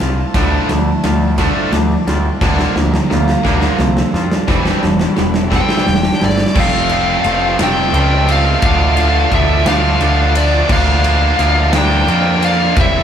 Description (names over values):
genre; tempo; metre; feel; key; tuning
post-rock; 58 BPM (dotted quarters); 6/8; straight; F major; A4 = 440 Hz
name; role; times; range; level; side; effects
dark chamber string section; sustained chords; 0.0-13.0 s; F3 to Bb5; -29 LUFS; left 1 dB; none
cimbalom; arpeggios; 0.0-10.2 s; C4 to F4; -28 LUFS; right 5 dB; none
twangy electric guitar; arpeggios; 0.0-6.6 s; D3 to F4; -27 LUFS; left 3 dB; none
growling picked electric bass; bass; 0.0-13.0 s; E1 to F2; -17 LUFS; equal; overdrive
big rock drum kit; drums; 0.0-12.9 s; crash cymbal, kick drum, ride cymbal, snare drum; -18 LUFS; equal; none
overdriven electric guitar; riff; 0.3-13.0 s; F2 to E4; -19 LUFS; right 6 dB; none
distorted electric guitar; riff; 0.4-13.0 s; D3 to G4; -20 LUFS; left 7 dB; overdrive
bluesy overdriven lead guitar; melody; 5.6-13.0 s; D5 to G5; -17 LUFS; left 1 dB; distortion
room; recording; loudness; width
moderate large studio reverb, RT60 1.1 s; band playing live in one room; -11 LUFS; side -8 dB against mid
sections
0.0-6.6 A section; 6.6-13.0 B section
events
build-up 0.0-6.6; drum fill 0.0-6.6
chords
0.4 Dmadd9; 2.4 Bbadd9/D; 4.5 Cadd9/E; 6.6 F; 8.6 Dm; 10.7 Bbadd9/D